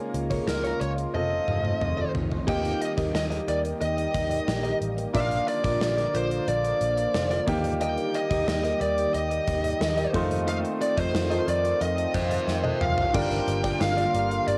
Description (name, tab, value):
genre	1980s-style pop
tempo	90 BPM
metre	4/4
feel	straight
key	unclear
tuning	A4 = 441 Hz
part	clear grand piano	accompaniment	0.0-14.6 s	G3 to G5	-35 LUFS	equal	cassette tape, shimmer reverb
part	sweeping resonant pad	sustained chords	0.0-14.6 s	Db3 to G4	-34 LUFS	equal	chorus, phaser, cassette tape, shimmer reverb
part	direct-recorded clean electric guitar	riff	0.1-14.5 s	F4 to Eb5	-37 LUFS	equal	none
part	vintage muted picked electric bass	bass	0.1-14.6 s	F1 to F2	-33 LUFS	equal	none
part	gated 80s drum kit	drums	0.1-14.6 s	crash cymbal, hi-hat, kick drum, snare drum, tambourine, toms	-34 LUFS	equal	cassette tape
part	bluesy overdriven lead guitar	melody	0.5-14.6 s	Bb4 to G5	-30 LUFS	equal	distortion, shimmer reverb
room	moderate small room reverb, RT60 0.5 s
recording	home recording on cassette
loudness	-26 LUFS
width	mono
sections	0.0-2.5 A section; 2.5-13.1 B section; 13.1-14.6 C section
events	drum fill 1.1-2.5, 12.5-13.1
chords	0.0 Db6; 1.1 F7; 2.5 Eb; 5.1 Bb; 7.5 Eb; 10.1 F7; 13.1 Gm7